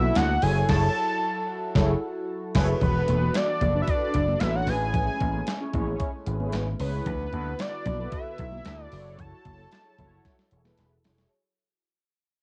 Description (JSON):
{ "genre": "early-eighties boogie funk", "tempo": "113 BPM", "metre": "4/4", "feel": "straight", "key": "unclear", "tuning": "A4 = 441 Hz", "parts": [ { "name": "fat analog lead", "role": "melody", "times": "0.0-10.8 s", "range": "B4 to A5", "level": "-31 LUFS", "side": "equal", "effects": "cassette tape" }, { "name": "mellow synth brass", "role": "accompaniment", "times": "0.0-11.3 s", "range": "C#4 to D5", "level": "-34 LUFS", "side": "equal", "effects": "chorus, phaser, cassette tape, plate reverb" }, { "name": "chorused pulse-width pad", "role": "sustained chords", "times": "0.0-11.3 s", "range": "D3 to A4", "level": "-39 LUFS", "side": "equal", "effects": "cassette tape" }, { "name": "vintage slap bass", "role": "bass", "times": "0.0-11.2 s", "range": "E1 to D2", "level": "-29 LUFS", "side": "equal", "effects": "none" }, { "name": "congas", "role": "percussion", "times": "0.0-11.2 s", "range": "none", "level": "-37 LUFS", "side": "equal", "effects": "none" }, { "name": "clean 12-bit digital drum machine", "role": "drums", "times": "0.2-11.3 s", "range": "crash cymbal, handclaps, hi-hat, kick drum, snare drum", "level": "-32 LUFS", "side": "equal", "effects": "cassette tape" } ], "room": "light reverb", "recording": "home recording on cassette, nothing above 10.3 kHz", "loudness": "-26 LUFS", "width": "mono", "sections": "0.0-2.8 A section; 2.8-11.3 B section", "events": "band accent 0.7-2.8; fade-out 2.8-11.3; drum fill 10.2-11.3", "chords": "0.4 F#m9; 2.8 E9sus4; 4.7 Amaj9; 7.1 D69; 8.9 F#m9" }